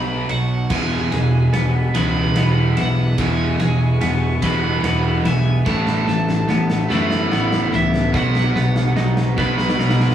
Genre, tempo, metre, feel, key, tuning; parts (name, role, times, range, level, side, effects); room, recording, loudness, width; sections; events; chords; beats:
post-rock; 48 BPM (dotted quarters); 6/8; straight; E major; A4 = 441 Hz
cranked stack guitar; melody; 0.0-10.1 s; E5 to B5; -27 LUFS; right 2 dB; overdrive
rich chamber string section; sustained chords; 0.0-10.1 s; E3 to C#6; -33 LUFS; right 1 dB
twelve-string electric guitar; arpeggios; 0.0-10.1 s; E2 to D#4; -26 LUFS; right 1 dB
sludgy distorted guitar; riff; 0.0-10.1 s; E2 to B3; -20 LUFS; left 2 dB; overdrive
fuzz fingered electric bass; bass; 0.0-10.1 s; E1 to F#2; -23 LUFS; right 1 dB; overdrive
big rock drum kit; drums; 0.3-10.1 s; crash cymbal, kick drum, ride cymbal, snare drum; -24 LUFS; equal
distorted electric guitar; riff; 0.7-10.1 s; B2 to E4; -25 LUFS; right 6 dB; distortion
wet studio reverb, RT60 0.5 s; band playing live in one room, small room ambience; -16 LUFS; side -10 dB against mid
0.0-10.1 A section
build-up 0.0-10.1; drum fill 0.0-10.1
0.0 B; 0.7 E; 5.7 Asus2; 8.1 B
| 0.71 1.95 | 3.19 4.43 | 5.67 6.91 | 8.14 9.38